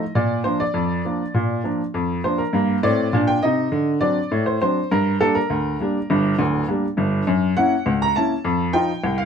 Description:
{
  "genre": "ragtime piano",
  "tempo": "101 BPM",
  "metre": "2/4",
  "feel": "straight",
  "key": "Bb major",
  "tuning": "A4 = 441 Hz",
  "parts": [
    { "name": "clear upright piano", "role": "solo", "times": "0.0-9.3 s", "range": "D1 to Bb5", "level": "-18 LUFS", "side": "equal", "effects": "none" }
  ],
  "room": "moderate club reverb, RT60 0.5 s",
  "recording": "minimal, uncompressed stereo recording",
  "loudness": "-18 LUFS",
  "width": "side -7 dB against mid",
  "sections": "0.0-9.3 A section",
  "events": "none",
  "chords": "0.2 Bb; 2.5 Gm; 3.7 D7; 4.9 Gm; 7.3 Gb7; 8.5 F5",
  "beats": "| 0.16 0.76 | 1.35 1.94 | 2.54 3.13 | 3.72 4.31 | 4.91 5.50 | 6.09 6.68 | 7.27 7.86 | 8.45 9.04"
}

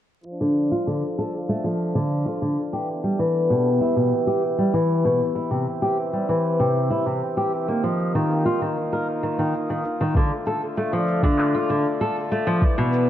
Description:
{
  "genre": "folktronica",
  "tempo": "97 BPM",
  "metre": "4/4",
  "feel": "straight",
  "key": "D dorian",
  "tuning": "A4 = 440 Hz",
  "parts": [
    { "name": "hand-pumped harmonium", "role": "sustained chords", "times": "0.2-13.1 s", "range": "D3 to F5", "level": "-26 LUFS", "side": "right 1 dB", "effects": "low-pass filter" },
    { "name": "electronic shaker and handclaps", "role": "drums", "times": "0.2-13.1 s", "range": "none", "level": "-33 LUFS", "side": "equal", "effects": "none" },
    { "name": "picked steel-string acoustic guitar", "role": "arpeggios", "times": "0.4-13.1 s", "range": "B2 to Bb4", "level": "-21 LUFS", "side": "left 1 dB", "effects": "low-pass filter, ping-pong delay" },
    { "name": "electronic kick drum", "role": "drums", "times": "10.1-12.7 s", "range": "none", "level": "-20 LUFS", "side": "equal", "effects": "none" }
  ],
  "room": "light reverb, digital ambience",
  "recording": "vinyl crackle, low-pass filter",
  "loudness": "-20 LUFS",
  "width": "side -11 dB against mid",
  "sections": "0.3-13.1 A section",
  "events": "filter sweep on steel-string acoustic guitar 0.3-13.1; filter sweep on harmonium 0.3-13.1; filter sweep 0.3-13.1",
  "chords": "0.3 Dm; 2.7 Em; 5.2 C; 7.7 Ebsus2; 10.1 Dm",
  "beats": "| 0.25 0.87 1.49 2.11 | 2.73 3.35 3.96 4.58 | 5.20 5.82 6.44 7.06 | 7.67 8.29 8.91 9.53 | 10.15 10.77 11.39 12.01 | 12.62"
}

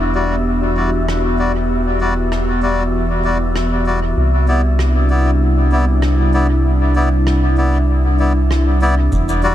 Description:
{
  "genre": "ambient dub",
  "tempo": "97 BPM",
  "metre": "4/4",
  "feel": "swing 53% on 16ths",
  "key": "unclear",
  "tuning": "A4 = 439 Hz",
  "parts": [
    { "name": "airy breathy pad", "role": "sustained chords", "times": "0.0-9.5 s", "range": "C3 to G4", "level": "-20 LUFS", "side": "equal", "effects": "chorus, vintage 12-bit sampler grit" },
    { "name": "round analog bass", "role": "bass", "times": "0.0-9.5 s", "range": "E1 to C2", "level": "-16 LUFS", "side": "equal", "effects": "tube saturation" },
    { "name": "wind-like tuned noise texture", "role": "texture", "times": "0.0-9.1 s", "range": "E5", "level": "-28 LUFS", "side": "left 2 dB", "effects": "built-in reverb" },
    { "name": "melodica", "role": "stabs", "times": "0.2-9.5 s", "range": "G3 to D5", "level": "-21 LUFS", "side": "left 2 dB", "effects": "low-pass filter, dub echo" },
    { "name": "rim click and cabasa", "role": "drums", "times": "1.1-9.4 s", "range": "none", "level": "-30 LUFS", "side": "right 1 dB", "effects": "dub echo" },
    { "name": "electronic kick drum", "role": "drums", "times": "9.1-9.3 s", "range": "none", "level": "-22 LUFS", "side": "equal", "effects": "none" }
  ],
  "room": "light reverb, studio ambience",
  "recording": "none",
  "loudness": "-13 LUFS",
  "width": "side -12 dB against mid",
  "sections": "0.0-9.1 A section",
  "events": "none",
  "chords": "0.0 Em9; 4.2 Cmaj9",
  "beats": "0.46 1.08 | 1.70 2.32 2.94 3.56 | 4.17 4.79 5.41 6.03 | 6.65 7.27 7.89 8.51 | 9.12"
}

